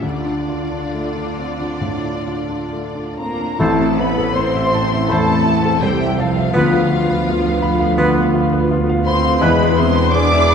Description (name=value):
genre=classical, romantic movement for piano and orchestra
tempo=65-86 BPM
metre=4/4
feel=rubato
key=D minor, A minor from 3.6 s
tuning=A4 = 440 Hz
part: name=clear grand piano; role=melody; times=0.0-10.5 s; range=A1 to B5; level=-20 LUFS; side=left 3 dB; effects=none
part: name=muted studio violin section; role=melody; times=0.0-10.5 s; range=D5 to D6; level=-26 LUFS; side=left 4 dB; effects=none
part: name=muted studio violin section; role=second line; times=0.0-10.5 s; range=F4 to D5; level=-26 LUFS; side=left 4 dB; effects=none
part: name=muted studio viola section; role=accompaniment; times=0.0-10.5 s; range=B3 to G#4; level=-25 LUFS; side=right 1 dB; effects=none
part: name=muted studio cello section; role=bass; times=0.0-10.5 s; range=D3 to D4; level=-24 LUFS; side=right 2 dB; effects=none
part: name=large flute ensemble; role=second line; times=3.2-10.5 s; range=F5 to D6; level=-24 LUFS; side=equal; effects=none
part: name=mellow clarinet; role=second line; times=3.6-9.7 s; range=E4 to F4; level=-28 LUFS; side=equal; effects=none
part: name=warm oboe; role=second line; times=3.6-9.7 s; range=B4 to C5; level=-30 LUFS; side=right 3 dB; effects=none
part: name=clear bassoon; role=accompaniment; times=3.6-9.7 s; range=G#3 to B3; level=-27 LUFS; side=right 2 dB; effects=none
part: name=dark French horn section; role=sustained chords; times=3.6-9.7 s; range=G#3 to F4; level=-26 LUFS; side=left 2 dB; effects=none
part: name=warm trumpet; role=stabs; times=3.6-9.7 s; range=A4 to B4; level=-27 LUFS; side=right 2 dB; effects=none
part: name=mellow tuba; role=bass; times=3.6-10.5 s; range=E1 to D2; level=-24 LUFS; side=right 5 dB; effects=none
part: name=muted studio double bass section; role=bass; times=3.6-10.5 s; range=A1 to E2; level=-22 LUFS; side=right 3 dB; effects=none
part: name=timpani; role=percussion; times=3.6-7.6 s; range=A2 to D3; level=-26 LUFS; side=equal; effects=none
room=wet scoring stage reverb, RT60 2.0 s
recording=dark, warm production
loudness=-14 LUFS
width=side -7 dB against mid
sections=0.0-3.6 A section; 3.6-10.5 B section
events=none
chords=0.0 Dm; 3.6 Am; 6.6 Bdim/D; 9.4 E7